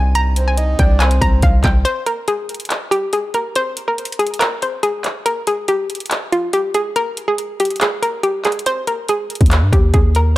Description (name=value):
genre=hip hop, trap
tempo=141 BPM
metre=4/4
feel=half-time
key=C minor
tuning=A4 = 440 Hz
part: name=hollow square pluck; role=melody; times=0.0-10.3 s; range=F4 to Bb5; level=-18 LUFS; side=equal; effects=chorus
part: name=mellow brass ensemble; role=sustained chords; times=0.0-1.8 s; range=C3 to Eb4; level=-33 LUFS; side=left 2 dB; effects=none
part: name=long sustained 808-style bass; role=bass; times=0.0-1.8, 9.4-10.4 s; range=C2 to G2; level=-14 LUFS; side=equal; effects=none
part: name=trap drum kit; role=drums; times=0.2-10.2 s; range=handclaps, hi-hat, kick drum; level=-18 LUFS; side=equal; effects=none
part: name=breathy flute-like synth lead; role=second line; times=0.4-1.4 s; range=C5 to Eb5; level=-25 LUFS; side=right 2 dB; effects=chorus, tape echo
room=digital ambience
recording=none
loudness=-15 LUFS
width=side -17 dB against mid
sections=0.0-1.9 A section; 1.9-10.4 B section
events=break 1.9-8.7; kick muted 8.7-9.1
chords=0.0 Cmadd9; 1.9 N.C.; 8.7 Ebadd11